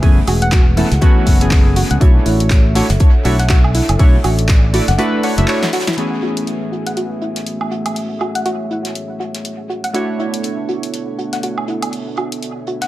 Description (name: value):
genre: deep house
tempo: 121 BPM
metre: 4/4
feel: swing 58% on 16ths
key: F# minor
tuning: A4 = 439 Hz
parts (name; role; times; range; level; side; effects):
- dark analog pad; sustained chords; 0.0-12.9 s; A3 to F#5; -26 LUFS; right 1 dB; chorus, sidechain pumping
- warm analog keys; stabs; 0.0-12.9 s; E3 to E5; -21 LUFS; equal; chorus, sidechain pumping, tape echo
- fingered electric bass; bass; 0.0-5.4 s; E1 to C#2; -16 LUFS; equal; sidechain pumping
- electronic kick drum; drums; 0.0-4.6 s; none; -11 LUFS; equal; none
- house drum kit; drums; 0.0-12.9 s; handclaps, hi-hat, snare drum, woodblock; -24 LUFS; right 1 dB; dub echo
- soft brush drum kit; drums; 0.0-12.9 s; hi-hat, snare drum; -33 LUFS; right 2 dB; sidechain pumping on hats, high-pass filter on hats, low-pass filter on hats, high-pass filter on snare, low-pass filter on snare, high-pass filter on room, low-pass filter on room, dub echo
- soft round pluck; arpeggios; 0.3-12.9 s; E4 to F#5; -23 LUFS; equal; chorus, sidechain pumping, analog delay
room: light reverb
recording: echo-heavy mix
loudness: -13 LUFS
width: side -16 dB against mid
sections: 0.0-6.0 A section; 6.0-12.9 B section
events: break 5.0-6.0; drum fill 5.6-6.0; filter sweep on synth arpeggio sound 6.0-12.9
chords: 0.0 F#m11; 2.0 Bm11; 6.0 F#m11; 9.9 Bm11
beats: | 0.03 0.52 1.02 1.51 | 2.01 2.51 3.00 3.50 | 4.00 4.49 4.99 5.48 | 5.98 6.47 6.97 7.47 | 7.96 8.46 8.95 9.45 | 9.95 10.44 10.94 11.43 | 11.93 12.42